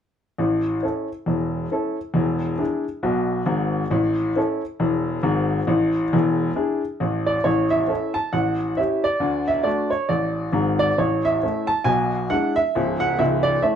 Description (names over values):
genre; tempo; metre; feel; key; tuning
jazz, stride piano; 136 BPM; 4/4; swing 59% on 8ths; A major; A4 = 435 Hz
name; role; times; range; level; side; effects
clear upright piano; solo; 0.4-13.8 s; C#1 to A5; -19 LUFS; equal; none
room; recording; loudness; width
light reverb; none; -20 LUFS; side -8 dB against mid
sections
0.4-7.5 A section; 7.5-13.8 B section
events
none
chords
0.4 A; 2.2 E7; 3.9 A; 5.7 E7; 7.5 A; 8.3 A7; 9.2 D; 11.0 A; 11.9 E7/B; 12.8 A/C#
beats
| 0.39 0.83 1.27 1.72 | 2.16 2.60 3.04 3.49 | 3.93 4.37 4.81 5.25 | 5.69 6.14 6.58 7.02 | 7.46 7.90 8.34 8.78 | 9.22 9.67 10.11 10.55 | 10.99 11.43 11.88 12.32 | 12.76 13.20 13.64